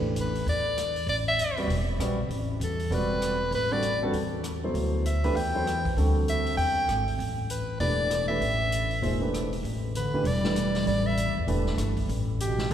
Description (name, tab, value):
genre	modal jazz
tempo	196 BPM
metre	4/4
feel	swing 61% on 8ths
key	A dorian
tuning	A4 = 441 Hz
part	warm baby grand piano	accompaniment	0.0-11.9 s	B2 to D5	-31 LUFS	right 1 dB	none
part	upright bass	bass	0.0-12.7 s	E1 to E2	-29 LUFS	equal	none
part	bright soprano saxophone	melody	0.2-12.7 s	G4 to G5	-29 LUFS	equal	none
part	vintage drum kit	drums	0.2-12.7 s	hi-hat, kick drum, rim click, snare drum	-39 LUFS	equal	none
part	warm bass clarinet	second line	9.9-12.7 s	B2 to G3	-31 LUFS	equal	none
room	wet church reverb, RT60 3.1 s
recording	recorded in a church or concert hall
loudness	-24 LUFS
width	side -10 dB against mid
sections	0.0-12.7 A section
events	none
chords	0.0 A9sus4